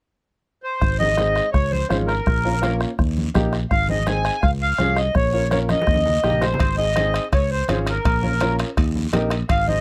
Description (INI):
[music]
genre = latin, cumbia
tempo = 166 BPM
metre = 4/4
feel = straight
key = Ab major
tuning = A4 = 440 Hz
[part]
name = accordion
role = melody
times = 0.6-9.8 s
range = Bb4 to Ab5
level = -24 LUFS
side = equal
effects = none
[part]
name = fingered electric bass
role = bass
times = 0.8-9.8 s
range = Ab1 to Eb2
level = -25 LUFS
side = equal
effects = none
[part]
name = bombo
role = percussion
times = 0.8-9.7 s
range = none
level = -26 LUFS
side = equal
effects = none
[part]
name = congas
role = percussion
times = 0.8-9.8 s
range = none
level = -31 LUFS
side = equal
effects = none
[part]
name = guiro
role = percussion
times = 0.8-9.8 s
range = none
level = -40 LUFS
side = equal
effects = none
[part]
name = clear upright piano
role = accompaniment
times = 1.0-9.7 s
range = Ab3 to C5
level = -28 LUFS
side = equal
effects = none
[part]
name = timbales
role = percussion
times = 6.6-9.7 s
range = none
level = -36 LUFS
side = equal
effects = none
[sound]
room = little or no reverb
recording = close, detailed microphones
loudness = -20 LUFS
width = mono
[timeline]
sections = 0.8-9.8 A section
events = drum fill 5.7-6.6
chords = 0.0 N.C.; 0.8 Ab; 1.5 Db; 2.3 Bbm; 3.0 Eb; 3.7 Ab; 4.4 Db; 5.2 Bbm; 5.9 Eb; 6.6 Ab; 7.3 Db; 8.1 Bbm; 8.8 Eb